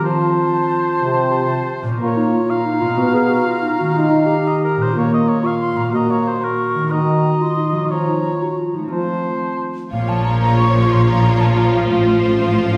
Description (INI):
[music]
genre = cinematic, heroic adventure film score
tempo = 122 BPM (dotted quarters)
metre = 12/8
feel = straight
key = Bb harmonic minor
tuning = A4 = 439 Hz
[part]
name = dark clarinet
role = second line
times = 0.0-9.7 s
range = Eb4 to Ab4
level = -24 LUFS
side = equal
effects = none
[part]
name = mellow silver concert flute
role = second line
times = 0.0-12.8 s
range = F5 to Db6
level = -26 LUFS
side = equal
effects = none
[part]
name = warm oboe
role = second line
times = 0.0-9.7 s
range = Bb4 to F5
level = -26 LUFS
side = equal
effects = none
[part]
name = dark French horn section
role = sustained chords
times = 0.0-12.8 s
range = C3 to F4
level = -23 LUFS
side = equal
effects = none
[part]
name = concert harp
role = arpeggios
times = 0.0-12.8 s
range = A2 to Bb4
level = -24 LUFS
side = equal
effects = none
[part]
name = warm symphonic violin section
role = melody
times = 9.9-12.8 s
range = C5 to Db5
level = -30 LUFS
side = equal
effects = none
[part]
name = rich symphonic violin section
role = second line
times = 9.9-12.8 s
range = F4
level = -26 LUFS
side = equal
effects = none
[part]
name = rich symphonic viola section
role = accompaniment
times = 9.9-12.8 s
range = F3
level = -26 LUFS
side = equal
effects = none
[part]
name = clear symphonic double bass section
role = bass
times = 9.9-12.8 s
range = A1 to Bb1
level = -22 LUFS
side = equal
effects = none
[part]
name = warm symphonic cello section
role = bass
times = 9.9-12.8 s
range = A2 to Bb2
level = -22 LUFS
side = equal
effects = none
[sound]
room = wet scoring stage reverb, RT60 1.6 s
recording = heard from further back in the room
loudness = -17 LUFS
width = mono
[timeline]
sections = 0.0-9.9 A section; 9.9-12.8 B section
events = build-up 0.0-9.9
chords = 0.0 F; 2.0 Bbm; 3.0 B; 4.0 Eb; 5.0 Bbm; 5.9 Gb/Bb; 6.9 Ebm; 7.9 Bbm/F; 8.9 F; 9.9 Bbm; 11.9 F/A